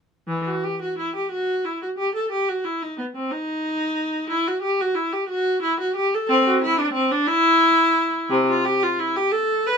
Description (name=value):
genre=classical, baroque-style suite movement for unaccompanied viola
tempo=60 BPM (dotted quarters)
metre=6/8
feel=rubato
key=E minor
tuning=A4 = 441 Hz
part: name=rich viola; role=solo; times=0.3-9.8 s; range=C3 to B4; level=-19 LUFS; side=equal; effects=none
room=little or no reverb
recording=close, detailed microphones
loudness=-19 LUFS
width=side -6 dB against mid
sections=0.3-9.8 A section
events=none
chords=none